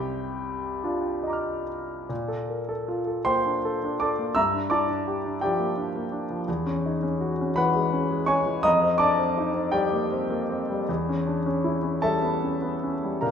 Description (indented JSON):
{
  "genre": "classical, impressionist solo piano",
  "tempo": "46-58 BPM (dotted quarters)",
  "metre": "6/8",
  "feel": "rubato",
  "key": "Bb lydian",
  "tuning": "A4 = 440 Hz",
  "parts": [
    { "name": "clear grand piano", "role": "solo", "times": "0.0-13.3 s", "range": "C2 to F6", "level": "-23 LUFS", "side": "left 1 dB", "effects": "none" }
  ],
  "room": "wet recital hall reverb, RT60 1.3 s",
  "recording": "minimal, uncompressed stereo recording",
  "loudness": "-23 LUFS",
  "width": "side -7 dB against mid",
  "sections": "0.0-2.1 A section; 2.1-13.3 B section",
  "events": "none",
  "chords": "0.0 Cm11; 2.1 Bbmaj7; 4.4 Gm7; 6.5 E69; 8.6 F9sus4; 10.9 Em6"
}